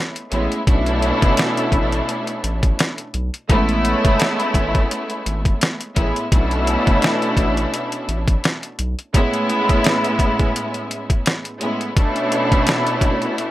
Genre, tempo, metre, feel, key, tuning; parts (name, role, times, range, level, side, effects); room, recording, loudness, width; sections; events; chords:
hip hop, boom-bap hip-hop; 85 BPM; 4/4; swing 55% on 16ths; B dorian; A4 = 440 Hz
clear symphonic string section; accompaniment; 0.0-13.5 s; A2 to E4; -19 LUFS; equal; cassette tape, high-pass filter, low-pass filter
boom bap sampler-style drum kit; drums; 0.2-13.5 s; hi-hat, kick drum, snare drum; -18 LUFS; equal
saturated sub bass; bass; 0.3-9.0 s; F#1 to B1; -23 LUFS; equal
little or no reverb; -16 LUFS; side -15 dB against mid
0.0-13.5 A section
0.0 Amaj9; 0.7 Bm11; 3.5 Amaj9; 6.3 Bm11; 9.1 Amaj9; 12.0 Bm11